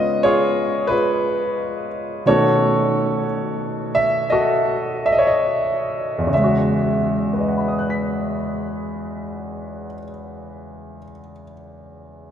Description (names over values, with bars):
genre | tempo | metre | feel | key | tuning
solo jazz | 59 BPM | 4/4 | swing 66% on 8ths | E major | A4 = 440 Hz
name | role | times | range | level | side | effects
warm concert grand piano | solo | 0.0-12.3 s | E2 to B6 | -18 LUFS | equal | none
room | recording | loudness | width
wet cathedral reverb, RT60 6.0 s | recorded in a church or concert hall | -17 LUFS | side -9 dB against mid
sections
0.0-6.3 A section; 6.3-10.4 B section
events
none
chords
0.0 C#7; 2.3 B9; 6.3 E69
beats
0.22 1.24 | 2.25 3.27 4.28 5.30 | 6.32 7.33 8.35 9.37